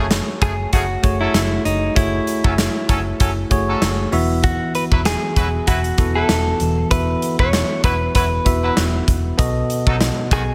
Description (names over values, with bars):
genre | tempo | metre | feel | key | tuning
1980s-style pop | 97 BPM | 4/4 | swing 55% on 16ths | unclear | A4 = 440 Hz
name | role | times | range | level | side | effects
bell-like tine electric piano | accompaniment | 0.0-10.5 s | B2 to E5 | -25 LUFS | equal | none
clear horn section | stabs | 0.0-10.4 s | C#3 to B4 | -29 LUFS | equal | none
vintage muted picked electric bass | bass | 0.0-10.5 s | E1 to B1 | -25 LUFS | equal | none
big rock drum kit | drums | 0.1-10.5 s | hi-hat, kick drum, snare drum | -22 LUFS | equal | gated reverb
direct-recorded clean electric guitar | melody | 0.4-10.5 s | D#4 to C#5 | -25 LUFS | equal | tape echo
room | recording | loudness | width
light reverb, studio reverb | none | -18 LUFS | mono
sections
0.0-10.5 A section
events
none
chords
0.0 F#madd9; 4.1 Esus2; 9.4 B7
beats
0.11 0.73 1.35 | 1.96 2.58 3.20 3.82 | 4.44 5.06 5.68 6.29 | 6.91 7.53 8.15 8.77 | 9.39 10.01